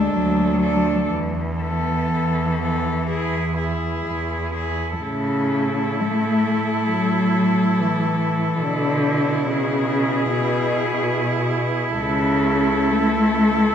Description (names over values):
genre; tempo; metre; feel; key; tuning
classical, lyrical piece for cello ensemble; 57-73 BPM; 4/4; rubato; A major; A4 = 440 Hz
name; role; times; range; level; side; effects
rich cello; melody; 0.0-13.7 s; G#4 to A4; -26 LUFS; left 4 dB; none
rich cello; second line; 0.0-13.7 s; B3 to E4; -26 LUFS; right 7 dB; none
warm cello; accompaniment; 0.0-13.7 s; B2 to A3; -21 LUFS; left 1 dB; none
rich cello; bass; 0.0-13.7 s; C#2 to B2; -26 LUFS; right 2 dB; none
room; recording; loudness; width
wet concert hall reverb, RT60 1.8 s; minimal, uncompressed stereo recording; -18 LUFS; side -8 dB against mid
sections
0.0-13.7 A section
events
none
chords
0.0 D; 1.1 Esus4; 5.0 A; 8.6 E7/B; 12.0 A/C#